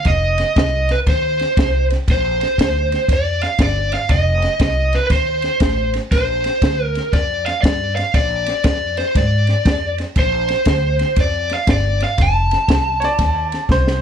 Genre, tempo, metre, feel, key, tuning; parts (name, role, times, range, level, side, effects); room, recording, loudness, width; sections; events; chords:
electric blues shuffle; 119 BPM; 4/4; swing 65% on 8ths; A4 = 440 Hz
lead guitar through a small cranked amp; melody; 0.0-13.7 s; B4 to A5; -18 LUFS; right 1 dB; overdrive
compact cocktail drum kit; drums; 0.0-14.0 s; kick drum, ride cymbal, snare drum; -19 LUFS; equal
upright bass; bass; 0.1-14.0 s; F1 to Ab2; -20 LUFS; equal
bright upright piano; second line; 13.0-14.0 s; C5 to D5; -22 LUFS; right 2 dB
light reverb; -15 LUFS; side -8 dB against mid
0.0-14.0 A section
drum fill 13.7-14.0
0.0 F7(no3); 2.1 Bb; 4.1 F7; 6.1 Bb; 12.2 F7